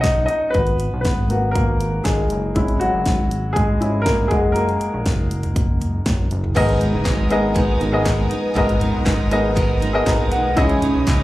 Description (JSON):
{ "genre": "piano-driven pop", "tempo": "120 BPM", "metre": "4/4", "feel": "straight", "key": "unclear", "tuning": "A4 = 440 Hz", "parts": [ { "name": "warm baby grand piano", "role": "accompaniment", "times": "0.0-11.2 s", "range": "G#2 to A#5", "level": "-20 LUFS", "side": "left 1 dB", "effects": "plate reverb, slapback echo" }, { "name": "chorused synth bass", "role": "bass", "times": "0.0-11.2 s", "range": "F#1 to C#2", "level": "-22 LUFS", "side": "equal", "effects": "none" }, { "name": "pop drum kit", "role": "drums", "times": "0.0-11.2 s", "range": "crash cymbal, hi-hat, kick drum, snare drum, toms", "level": "-21 LUFS", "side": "equal", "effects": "none" }, { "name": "picked steel-string acoustic guitar", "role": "riff", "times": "6.5-11.2 s", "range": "G#2 to A#4", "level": "-24 LUFS", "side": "right 4 dB", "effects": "slapback echo" }, { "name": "clear studio string section", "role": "sustained chords", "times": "6.6-11.2 s", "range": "B3 to D#6", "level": "-32 LUFS", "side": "equal", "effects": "none" }, { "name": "group handclap", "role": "percussion", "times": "7.1-11.2 s", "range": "none", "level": "-30 LUFS", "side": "left 2 dB", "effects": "slapback echo" } ], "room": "light reverb", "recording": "live gig heard through the venue's PA, club reverb, lossy compression artefacts", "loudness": "-16 LUFS", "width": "side -16 dB against mid", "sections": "0.0-6.6 A section; 6.6-11.2 B section", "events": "grand piano solo 0.0-6.6; grand piano fill 9.8-10.6", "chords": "0.0 Bmaj7; 0.5 G#m7; 2.6 C#m; 4.3 F#add9; 6.6 G#madd9; 10.6 C#madd9", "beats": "0.04 | 0.55 1.05 1.55 2.05 | 2.55 3.05 3.56 4.06 | 4.56 5.06 5.56 6.06 | 6.56 7.07 7.57 8.07 | 8.57 9.07 9.57 10.07 | 10.57 11.07" }